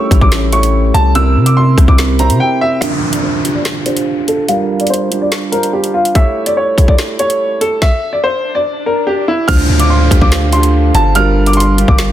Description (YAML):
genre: hip hop, drill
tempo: 144 BPM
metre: 4/4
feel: half-time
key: D minor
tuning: A4 = 440 Hz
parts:
  - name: clear upright piano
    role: melody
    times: 0.0-12.1 s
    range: E4 to F6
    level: -15 LUFS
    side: equal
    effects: low-pass filter, digital delay
  - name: dark concert grand piano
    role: accompaniment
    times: 0.0-12.1 s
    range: C3 to C#5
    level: -17 LUFS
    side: right 5 dB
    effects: low-pass filter
  - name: glass harmonica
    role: sustained chords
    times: 0.0-2.8, 9.5-12.1 s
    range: G3 to F5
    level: -22 LUFS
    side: left 3 dB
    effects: none
  - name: long sustained 808-style bass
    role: bass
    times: 0.1-2.4, 9.5-12.1 s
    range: G1 to C3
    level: -12 LUFS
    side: left 1 dB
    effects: none
  - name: drill drum kit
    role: drums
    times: 0.1-12.1 s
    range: crash cymbal, finger snaps, hi-hat, kick drum, rim click, snare drum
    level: -13 LUFS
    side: equal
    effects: soft clipping on snare
  - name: downlifter and swell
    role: sound effects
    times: 2.8-12.1 s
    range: none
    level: -22 LUFS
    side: left 3 dB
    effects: none
room: light reverb, studio reverb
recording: dense, heavily limited modern master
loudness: -10 LUFS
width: side -12 dB against mid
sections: 0.0-2.8 A section; 2.8-9.5 B section; 9.5-12.1 A section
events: silent gap 2.4-2.8; filter sweep 2.8-9.5; swell 8.2-9.5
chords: 0.0 A7; 1.2 C7; 2.8 Dm7; 4.5 Gm7; 6.2 A7; 7.8 N.C.; 9.5 Dm7; 11.2 Gm7